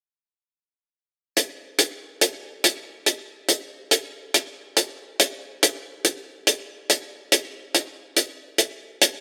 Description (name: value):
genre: rock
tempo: 141 BPM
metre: 4/4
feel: straight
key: none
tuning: none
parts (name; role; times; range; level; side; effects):
- hi-hat; drums; 1.4-9.1 s; none; -20 LUFS; equal; none
room: light reverb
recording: rough home demo mix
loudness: -24 LUFS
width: mono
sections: 1.2-9.2 A section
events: none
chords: none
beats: | 1.16 1.59 2.01 2.44 | 2.86 3.29 3.71 4.13 | 4.56 4.98 5.41 5.83 | 6.26 6.68 7.11 7.53 | 7.95 8.38 8.80